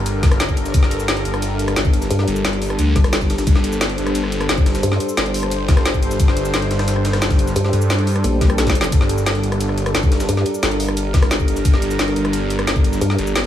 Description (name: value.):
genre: dark technical drum and bass.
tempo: 176 BPM.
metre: 4/4.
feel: straight.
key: G minor.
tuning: A4 = 440 Hz.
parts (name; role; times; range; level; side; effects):
sweeping resonant pad; sustained chords; 0.0-13.5 s; G3 to C5; -22 LUFS; equal; chorus, sidechain pumping.
phased detuned saw bass; bass; 0.0-13.5 s; G1 to G2; -21 LUFS; equal; phaser, tube saturation, sidechain pumping.
breakbeat sampler-style drum kit; drums; 0.1-13.4 s; ride cymbal, snare drum; -32 LUFS; left 1 dB; none.
drum and bass drum kit; drums; 0.1-13.5 s; cabasa, hi-hat, rim click, snare drum; -22 LUFS; left 1 dB; overdrive, studio reverb.
electronic kick drum; drums; 0.2-12.8 s; none; -15 LUFS; left 1 dB; overdrive, studio reverb.
vowel-sweep wobble bass; bass; 2.1-5.0, 7.6-10.4, 13.0-13.2 s; G1 to G2; -18 LUFS; equal; chorus.
swell; sound effects; 8.3-8.9 s; none; -28 LUFS; right 2 dB; none.
room: light reverb, digital ambience.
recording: none.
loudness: -15 LUFS.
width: side -11 dB against mid.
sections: 0.0-13.5 A section.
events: swell 8.3-8.9; drum fill 8.6-8.9.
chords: 0.0 Gmadd9.